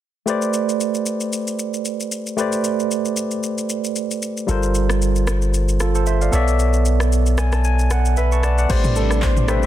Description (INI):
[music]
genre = amapiano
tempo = 114 BPM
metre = 4/4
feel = swing 55% on 16ths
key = A minor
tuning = A4 = 440 Hz
[part]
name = barky tine electric piano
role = accompaniment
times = 0.3-9.7 s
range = G3 to C#6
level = -21 LUFS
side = moving between left 2 dB and right 8 dB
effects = overdrive, auto-pan
[part]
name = deep house drum kit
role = drums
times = 0.3-9.7 s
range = crash cymbal, handclaps, kick drum, rim click, shaker, toms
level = -26 LUFS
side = left 1 dB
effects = none
[part]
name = punchy sub bass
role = bass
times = 4.5-9.7 s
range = G1 to B1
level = -18 LUFS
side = equal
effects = none
[part]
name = warm grand piano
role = melody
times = 8.2-9.7 s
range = A4 to C5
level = -25 LUFS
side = left 3 dB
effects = digital delay
[part]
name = rich studio string section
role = sustained chords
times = 8.7-9.7 s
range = B2 to D4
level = -27 LUFS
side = left 4 dB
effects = none
[sound]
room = light reverb, digital ambience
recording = dense, heavily limited modern master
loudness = -17 LUFS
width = side -12 dB against mid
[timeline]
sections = 0.3-8.7 A section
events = tine electric piano fill 7.1-8.7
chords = 0.3 Am11; 4.5 Gm11; 6.3 Bm11; 8.7 Am11